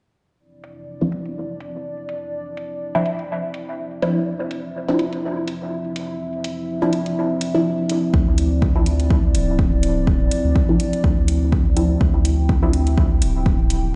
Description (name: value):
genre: dub techno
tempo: 124 BPM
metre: 4/4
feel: swing 55% on 16ths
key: D minor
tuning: A4 = 440 Hz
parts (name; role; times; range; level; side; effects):
- dark analog pad; sustained chords; 0.4-14.0 s; F3 to G5; -28 LUFS; equal; lush chorus, sidechain pumping
- electronic hi-hat; drums; 0.6-13.8 s; none; -35 LUFS; equal; overdrive, low-pass filter on hats, small room reverb
- filtered dub chord stab; stabs; 1.0-12.7 s; F3 to E4; -26 LUFS; equal; phaser, sidechain pumping, dub echo
- round analog bass; bass; 8.1-14.0 s; D1 to D2; -22 LUFS; equal; sidechain pumping
- electronic kick drum; drums; 8.1-13.6 s; none; -21 LUFS; equal; overdrive, small room reverb
room: light reverb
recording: played on a big sound system in a bare room, stone room reverb, nothing above 10.6 kHz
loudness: -20 LUFS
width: mono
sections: 0.4-14.0 A section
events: filter sweep on synth stab 0.4-14.0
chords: 0.4 Dm9